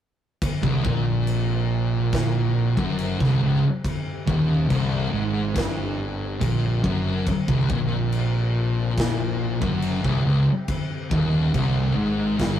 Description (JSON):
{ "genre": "stoner and doom metal", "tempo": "70 BPM", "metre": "4/4", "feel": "straight", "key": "C phrygian", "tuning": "A4 = 441 Hz", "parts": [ { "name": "string machine, violas", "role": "sustained chords", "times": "0.4-12.6 s", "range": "C3 to G4", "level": "-40 LUFS", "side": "equal", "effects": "none" }, { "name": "big rock drum kit", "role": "drums", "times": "0.4-12.6 s", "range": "crash cymbal, kick drum, snare drum", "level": "-28 LUFS", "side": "left 1 dB", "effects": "none" }, { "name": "thick fuzz guitar", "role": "riff", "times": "0.6-12.6 s", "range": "C2 to Bb2", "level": "-22 LUFS", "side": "left 2 dB", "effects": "distortion" }, { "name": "thick fuzz guitar", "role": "riff", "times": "0.6-12.6 s", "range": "C2 to Bb2", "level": "-27 LUFS", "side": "right 6 dB", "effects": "distortion" }, { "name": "fuzz fingered electric bass", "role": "bass", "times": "0.6-12.6 s", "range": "C1 to Bb1", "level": "-31 LUFS", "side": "equal", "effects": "overdrive" } ], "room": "moderate studio reverb, RT60 0.7 s", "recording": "rough rehearsal-room recording, warm saturation", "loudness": "-20 LUFS", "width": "side -10 dB against mid", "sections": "0.4-12.6 A section", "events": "none", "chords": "0.4 Cm", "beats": "| 0.42 1.27 2.13 2.98 | 3.84 4.70 5.55 6.41 | 7.26 8.12 8.97 9.83 | 10.69 11.54 12.40" }